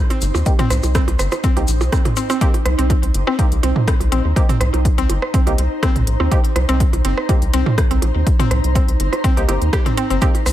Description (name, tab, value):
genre	minimal techno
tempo	123 BPM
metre	4/4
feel	straight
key	C minor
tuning	A4 = 439 Hz
part	ethereal airy pad	texture	0.1-10.5 s	Eb4 to C6	-27 LUFS	right 1 dB	ensemble chorus, built-in reverb, sidechain pumping
part	flickering grainy texture	texture	0.1-10.5 s	C5	-33 LUFS	right 2 dB	built-in reverb, sidechain pumping
part	mallet-like synth pluck	riff	0.1-10.3 s	C4 to G4	-24 LUFS	left 1 dB	chorus, cassette tape, sidechain pumping, digital delay
part	techno drum kit	drums	0.1-10.5 s	hi-hat, rim click	-27 LUFS	left 1 dB	overdrive
part	minimal click drum kit	percussion	0.1-10.5 s	percussion blips, rim click, toms	-24 LUFS	right 3 dB	dub echo
part	rubbery square bass	bass	0.2-10.5 s	G1 to Eb2	-18 LUFS	equal	sidechain pumping
part	tube shaker	percussion	0.2-2.4, 10.2-10.5 s	none	-29 LUFS	left 6 dB	none
part	filtered dub chord stab	stabs	0.5-10.3 s	Bb3 to G4	-28 LUFS	right 2 dB	chorus, dub echo
part	electronic kick drum	drums	0.5-10.3 s	none	-17 LUFS	equal	overdrive
room	digital ambience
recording	none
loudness	-14 LUFS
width	side -13 dB against mid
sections	0.0-2.4 A section; 2.4-10.5 B section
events	filter sweep on synth stab 0.0-2.4; drop 2.4-10.5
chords	0.0 Cm7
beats	| 0.46 0.95 1.44 1.93 | 2.41 2.90 3.39 3.88 | 4.36 4.85 5.34 5.83 | 6.32 6.80 7.29 7.78 | 8.27 8.75 9.24 9.73 | 10.22